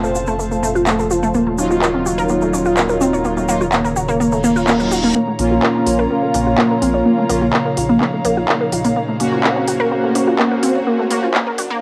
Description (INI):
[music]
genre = melodic techno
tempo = 126 BPM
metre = 4/4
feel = straight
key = Bb harmonic minor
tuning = A4 = 441 Hz
[part]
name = evolving wavetable pad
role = sustained chords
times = 0.0-11.8 s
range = Db3 to Gb4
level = -28 LUFS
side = equal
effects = phaser, built-in reverb, cassette tape
[part]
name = unison pluck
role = arpeggios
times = 0.0-11.8 s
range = A3 to Db5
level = -20 LUFS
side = equal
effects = flanger, cassette tape, analog delay
[part]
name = round analog bass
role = bass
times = 0.0-11.8 s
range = Eb1 to Bb1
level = -29 LUFS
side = equal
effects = none
[part]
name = bowed-like drone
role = drone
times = 0.0-11.8 s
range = Bb2 to Db3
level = -32 LUFS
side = equal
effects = built-in reverb, phaser, cassette tape
[part]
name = egg shaker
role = percussion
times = 0.0-5.1 s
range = none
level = -33 LUFS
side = equal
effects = none
[part]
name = airy breathy pad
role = texture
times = 0.0-11.8 s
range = C5 to Bb5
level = -27 LUFS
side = equal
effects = chorus, cassette tape
[part]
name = techno drum kit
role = drums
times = 0.9-11.7 s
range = handclaps, hi-hat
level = -22 LUFS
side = equal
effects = overdrive, studio reverb, cassette tape
[part]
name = analog synth brass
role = stabs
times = 1.6-11.3 s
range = Gb3 to Gb4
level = -22 LUFS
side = equal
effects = chorus, cassette tape, analog delay
[part]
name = reverse cymbal and riser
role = sound effects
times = 4.4-11.8 s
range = none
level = -33 LUFS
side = equal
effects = none
[sound]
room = moderate booth ambience, RT60 0.2 s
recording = home recording on cassette, high-pass filter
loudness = -16 LUFS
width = mono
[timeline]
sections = 0.0-5.2 A section; 5.2-11.8 B section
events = reverse cymbal 4.4-5.2; build-up 5.2-11.8; filter sweep on synth arpeggio sound 5.2-11.8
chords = 0.0 F; 1.3 Ebmadd9; 5.2 Bbm; 9.0 Gb